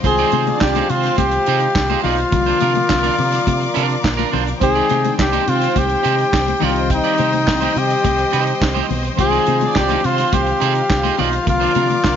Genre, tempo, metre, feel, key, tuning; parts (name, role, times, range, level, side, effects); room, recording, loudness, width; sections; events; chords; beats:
disco; 105 BPM; 4/4; straight; A4 = 444 Hz
warm studio violin section; second line; 0.0-10.6 s; C4 to D5; -24 LUFS; right 13 dB
electric guitar at the edge of break-up; accompaniment; 0.0-12.1 s; D4 to D5; -24 LUFS; right 14 dB
mellow tine electric piano; accompaniment; 0.0-12.2 s; D3 to G4; -26 LUFS; left 10 dB; medium stereo tremolo
clear studio string section; sustained chords; 0.0-12.2 s; Bb4 to D6; -26 LUFS; left 2 dB
fingered electric bass; bass; 0.0-12.2 s; Bb1 to C3; -22 LUFS; right 1 dB
vintage drum kit; drums; 0.0-12.2 s; handclaps, hi-hat, kick drum, snare drum; -22 LUFS; right 2 dB
clear flugelhorn; melody; 0.1-12.2 s; Eb4 to Ab4; -18 LUFS; left 2 dB
congas; percussion; 0.3-12.0 s; -28 LUFS; left 12 dB
light reverb, small room ambience; 1960s-style stereo with parts hard left and right, nothing above 7.5 kHz; -14 LUFS; side -8 dB against mid
0.0-12.2 A section
0.0 Fm7/C; 2.3 Bb/C; 4.6 Abmaj7/C; 6.6 Cm; 9.2 Fm7/C; 11.5 Bb/C
| 0.04 0.61 1.18 1.75 | 2.33 2.90 3.47 4.04 | 4.61 5.19 5.76 6.33 | 6.90 7.47 8.04 8.62 | 9.19 9.76 10.33 10.90 | 11.47 12.04